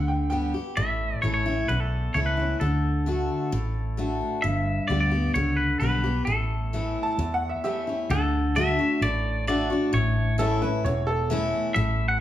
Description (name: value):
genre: honky-tonk and classic country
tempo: 131 BPM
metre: 4/4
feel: straight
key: A mixolydian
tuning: A4 = 439 Hz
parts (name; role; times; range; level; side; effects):
- bright upright piano; second line; 0.0-0.5, 7.0-11.3 s; G4 to A5; -29 LUFS; right 2 dB; none
- picked steel-string acoustic guitar; accompaniment; 0.0-12.2 s; E2 to G4; -27 LUFS; left 2 dB; none
- vintage muted fingered electric bass; bass; 0.0-12.2 s; E1 to E2; -27 LUFS; right 1 dB; none
- twangy electric guitar; melody; 0.8-12.2 s; A4 to F#5; -28 LUFS; equal; tape echo
room: moderate large studio reverb, RT60 0.9 s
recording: heard from further back in the room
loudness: -23 LUFS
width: side -12 dB against mid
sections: 0.0-8.1 A section; 8.1-12.2 B section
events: none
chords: 0.0 G; 0.8 A; 2.6 D; 4.4 G; 6.3 A; 8.1 D; 9.9 A